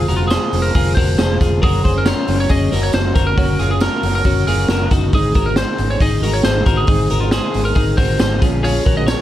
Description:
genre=jangly indie pop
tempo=137 BPM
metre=4/4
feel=straight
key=unclear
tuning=A4 = 441 Hz
part: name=lightly driven lead guitar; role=melody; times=0.0-9.2 s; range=F4 to Eb5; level=-22 LUFS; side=right 2 dB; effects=none
part: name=fingerpicked steel-string acoustic guitar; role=accompaniment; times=0.0-9.2 s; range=Ab2 to Gb4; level=-25 LUFS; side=right 6 dB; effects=none
part: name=twelve-string electric guitar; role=arpeggios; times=0.0-9.2 s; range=Db4 to Db5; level=-22 LUFS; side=left 6 dB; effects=vibrato effect, tape echo
part: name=vintage muted fingered electric bass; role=bass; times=0.0-9.1 s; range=F1 to Bb1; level=-19 LUFS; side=equal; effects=none
part: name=raw garage drum kit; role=drums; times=0.1-9.2 s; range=hi-hat, kick drum, snare drum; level=-17 LUFS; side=equal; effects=none
part: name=tambourine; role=percussion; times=0.1-9.2 s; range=none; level=-38 LUFS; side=right 7 dB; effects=none
room=light reverb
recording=dark, warm production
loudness=-13 LUFS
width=side -13 dB against mid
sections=0.0-9.2 A section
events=none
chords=0.0 Fm; 1.6 Gb; 5.1 Ab; 8.4 Bbm7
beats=0.31 0.75 1.19 | 1.62 2.06 2.50 2.94 | 3.38 3.82 4.26 4.70 | 5.13 5.57 6.01 6.45 | 6.89 7.33 7.76 8.20 | 8.64 9.08

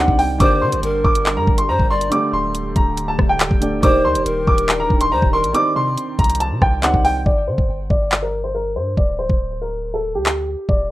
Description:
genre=hip hop, drill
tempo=140 BPM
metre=4/4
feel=half-time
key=G minor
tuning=A4 = 440 Hz
part: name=clear upright piano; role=melody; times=0.0-10.9 s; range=G4 to D6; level=-20 LUFS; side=equal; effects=low-pass filter, tape echo
part: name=felt-muted upright piano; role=accompaniment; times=0.0-7.3 s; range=D3 to D5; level=-24 LUFS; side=right 2 dB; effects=none
part: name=dark analog pad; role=sustained chords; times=0.0-7.2 s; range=D3 to Bb4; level=-29 LUFS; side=equal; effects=chorus
part: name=long sustained 808-style bass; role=bass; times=0.0-10.9 s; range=D1 to D3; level=-24 LUFS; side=equal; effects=none
part: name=drill drum kit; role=drums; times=0.1-10.8 s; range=handclaps, hi-hat, kick drum, rim click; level=-17 LUFS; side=equal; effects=none
part: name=mellow pan flute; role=second line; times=0.4-5.5 s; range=Bb4 to D5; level=-21 LUFS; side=left 1 dB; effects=tape echo
room=moderate studio reverb, RT60 0.6 s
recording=rough home demo mix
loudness=-15 LUFS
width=side -16 dB against mid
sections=0.0-7.3 A section; 7.3-10.9 B section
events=break 7.3-10.9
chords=0.4 Gm; 2.1 Dsus4; 3.8 Ebmaj7; 5.5 Cmadd9; 7.3 G5; 9.0 Dsus4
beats=| 0.40 0.83 1.26 1.69 | 2.12 2.54 2.97 3.40 | 3.83 4.26 4.69 5.12 | 5.54 5.97 6.40 6.83 | 7.26 7.69 8.12 8.54 | 8.97 9.40 9.83 10.26 | 10.69

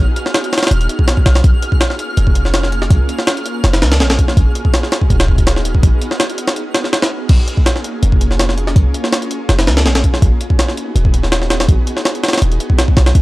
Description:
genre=drum and bass, jungle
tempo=164 BPM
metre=4/4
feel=straight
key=Bb phrygian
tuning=A4 = 445 Hz
part: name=ethereal airy pad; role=sustained chords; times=0.0-13.2 s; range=Bb3 to Ab4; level=-24 LUFS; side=right 1 dB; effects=ensemble chorus, built-in reverb, vintage 12-bit sampler grit
part: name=warm 808-style bass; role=bass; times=0.0-13.2 s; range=Eb1 to Db2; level=-13 LUFS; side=equal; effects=none
part: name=twinkling granular texture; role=texture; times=0.0-7.3 s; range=F6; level=-28 LUFS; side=equal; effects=built-in reverb
part: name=jungle sampler-style drum kit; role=drums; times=0.2-13.2 s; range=crash cymbal, hi-hat, kick drum, snare drum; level=-13 LUFS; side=equal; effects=none
room=digital ambience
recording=dry, gritty hardware recording, transformer saturation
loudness=-11 LUFS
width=side -19 dB against mid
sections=0.0-7.3 A section; 7.3-13.2 A section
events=drop 0.0-7.3, 7.3-13.2; break 6.6-7.3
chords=0.0 Abm7; 1.4 Bbm7; 4.4 Abm7; 7.3 Bbm7; 10.2 Abm7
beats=0.34 0.71 1.08 | 1.44 1.81 2.17 2.54 | 2.91 3.27 3.64 4.00 | 4.37 4.74 5.10 5.47 | 5.83 6.20 6.57 6.93 | 7.30 7.66 8.03 8.39 | 8.76 9.13 9.49 9.86 | 10.22 10.59 10.96 11.32 | 11.69 12.05 12.42 12.78 | 13.15

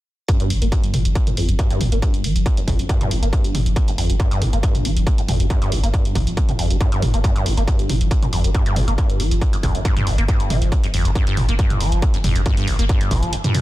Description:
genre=driving peak-time techno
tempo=138 BPM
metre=4/4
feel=straight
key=G minor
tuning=A4 = 438 Hz
part: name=acid bass, saw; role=riff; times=0.3-13.6 s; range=G1 to Bb3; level=-23 LUFS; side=equal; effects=wide subtle chorus, vintage 12-bit sampler grit, sidechain pumping, ping-pong delay
part: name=electronic kick drum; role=drums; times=0.3-13.2 s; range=none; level=-20 LUFS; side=equal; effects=distortion, overdrive
part: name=punchy analog drum machine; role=drums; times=0.3-13.6 s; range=hi-hat, toms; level=-26 LUFS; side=right 1 dB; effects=sidechain pumping on hats, sidechain pumping on toms
part: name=saturated sub bass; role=bass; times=0.4-13.3 s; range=G1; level=-21 LUFS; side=equal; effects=tube saturation, sidechain pumping, low-pass filter
room=light reverb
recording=dense, heavily limited modern master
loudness=-16 LUFS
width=side -16 dB against mid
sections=0.3-13.6 A section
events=filter sweep on acid bass 0.3-13.6; kick drops out 13.3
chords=0.3 G5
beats=| 0.28 0.72 1.16 1.59 | 2.02 2.46 2.89 3.33 | 3.76 4.20 4.63 5.07 | 5.50 5.94 6.37 6.81 | 7.24 7.68 8.11 8.55 | 8.98 9.42 9.85 10.29 | 10.72 11.15 11.59 12.02 | 12.46 12.89 13.33

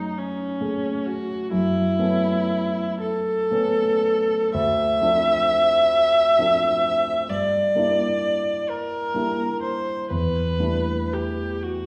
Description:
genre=classical, impressionist duo for viola and grand piano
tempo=38-46 BPM (dotted quarters)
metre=6/8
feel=rubato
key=D minor from 4.5 s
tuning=A4 = 445 Hz
part: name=clear viola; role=melody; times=0.0-11.9 s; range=Db4 to E5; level=-23 LUFS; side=equal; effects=none
part: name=dark concert grand piano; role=accompaniment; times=0.0-11.9 s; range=D2 to A4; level=-28 LUFS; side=equal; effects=none
room=wet recital hall reverb, RT60 1.5 s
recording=heard from further back in the room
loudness=-22 LUFS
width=mono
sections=0.0-11.9 A section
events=none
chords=0.0 Gbmadd9; 1.5 A69/F#; 4.5 Dm7; 7.3 Gm6; 10.1 Em11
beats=0.18 | 1.52 3.02 | 4.54 5.93 | 7.30 8.68 | 10.10 11.62

